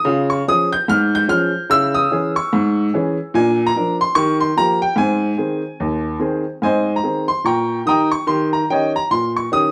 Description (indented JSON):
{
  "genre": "jazz, stride piano",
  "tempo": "146 BPM",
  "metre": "4/4",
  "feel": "swing 60% on 8ths",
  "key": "Ab major",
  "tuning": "A4 = 441 Hz",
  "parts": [
    { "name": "clear upright piano", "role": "solo", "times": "0.0-9.7 s", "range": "Eb2 to G6", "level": "-18 LUFS", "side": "equal", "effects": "none" }
  ],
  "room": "moderate large studio reverb, RT60 0.8 s",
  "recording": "band playing live in one room",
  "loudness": "-18 LUFS",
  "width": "mono",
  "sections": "0.0-6.6 A section; 6.6-9.7 A section",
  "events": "none",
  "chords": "0.1 Db; 1.7 Dbm; 3.3 Bb; 4.2 Ebadd9; 5.0 Ab; 7.4 Eb7/Bb; 8.3 Eb7",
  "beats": "| 0.06 0.47 0.88 1.29 | 1.70 2.11 2.52 2.93 | 3.34 3.75 4.16 4.57 | 4.98 5.39 5.80 6.21 | 6.63 7.04 7.45 7.86 | 8.27 8.68 9.09 9.50"
}